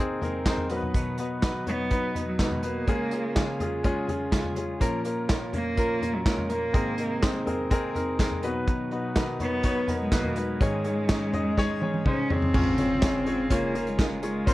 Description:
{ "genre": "piano-driven pop", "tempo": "124 BPM", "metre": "4/4", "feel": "straight", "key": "Db major", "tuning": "A4 = 441 Hz", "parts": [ { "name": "warm upright piano", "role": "accompaniment", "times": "0.0-14.5 s", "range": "Bb1 to Eb5", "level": "-30 LUFS", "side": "left 2 dB", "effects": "none" }, { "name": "mellow tonewheel organ", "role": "sustained chords", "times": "0.0-14.5 s", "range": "Ab2 to F4", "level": "-38 LUFS", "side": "right 1 dB", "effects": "none" }, { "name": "direct-recorded clean electric guitar", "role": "riff", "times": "0.0-14.5 s", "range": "Ab2 to C5", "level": "-35 LUFS", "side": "right 3 dB", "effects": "spring reverb" }, { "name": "unplugged drum kit", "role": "drums", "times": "0.2-14.5 s", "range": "crash cymbal, handclaps, hi-hat, kick drum, snare drum, toms", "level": "-27 LUFS", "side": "equal", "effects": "none" }, { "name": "warm cello", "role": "melody", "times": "1.7-14.5 s", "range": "Gb3 to Db4", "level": "-29 LUFS", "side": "equal", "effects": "none" }, { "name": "impact", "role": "sound effects", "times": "12.5-14.5 s", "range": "none", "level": "-35 LUFS", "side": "equal", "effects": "none" } ], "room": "moderate studio ambience, RT60 0.5 s", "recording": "worn, warbling old tape, cassette tape, warbly pitch drift", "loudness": "-24 LUFS", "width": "side -17 dB against mid", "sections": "0.0-12.5 A section; 12.5-14.5 B section", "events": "drum fill 11.6-12.5; impact 12.5-14.5", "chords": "0.0 Abadd9; 0.7 Cb; 2.9 Db; 4.8 Bbm; 6.7 Abadd9; 8.4 Cb; 10.6 Absus4; 12.5 Db" }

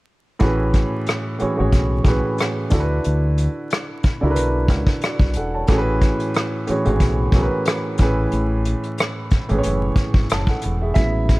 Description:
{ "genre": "R&B, neo-soul", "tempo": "91 BPM", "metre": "4/4", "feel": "swing 56% on 16ths", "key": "A major", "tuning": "A4 = 440 Hz", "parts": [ { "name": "warm baby grand piano", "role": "accompaniment", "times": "0.4-11.4 s", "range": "A2 to A5", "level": "-21 LUFS", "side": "right 1 dB", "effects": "none" }, { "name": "deep dub fingered electric bass", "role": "bass", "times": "0.4-11.4 s", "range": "E1 to D2", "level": "-21 LUFS", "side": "equal", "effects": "none" }, { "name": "vintage brush drum kit", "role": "drums", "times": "0.4-11.4 s", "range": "hi-hat, kick drum, rim click", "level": "-19 LUFS", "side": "equal", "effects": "none" } ], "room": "small room ambience", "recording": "dark, warm production, vinyl crackle", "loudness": "-17 LUFS", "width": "side -20 dB against mid", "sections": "0.4-11.0 A section", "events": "none", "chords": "0.4 Amaj13; 2.7 D6; 5.7 Amaj13; 8.0 Amaj9" }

